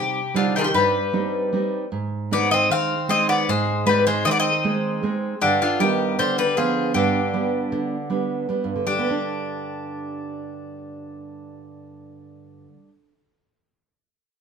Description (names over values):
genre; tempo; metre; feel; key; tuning
greek folk, Greek bouzouki band; 156 BPM (eighths); 9/8; straight; G phrygian dominant; A4 = 440 Hz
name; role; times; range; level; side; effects
Greek bouzouki; melody; 0.0-12.9 s; F4 to F5; -22 LUFS; left 4 dB; none
nylon-string guitar; accompaniment; 0.0-13.1 s; G2 to Eb4; -24 LUFS; right 4 dB; none
Greek bouzouki; second line; 0.4-12.9 s; D3 to D4; -26 LUFS; left 1 dB; none
room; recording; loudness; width
moderate studio reverb, RT60 0.6 s; minimal, uncompressed stereo recording; -19 LUFS; side -6 dB against mid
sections
0.0-8.9 A section; 8.9-12.3 B section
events
speeding up 0.0-12.3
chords
0.0 Cm; 1.9 Ab; 5.4 G; 8.9 G5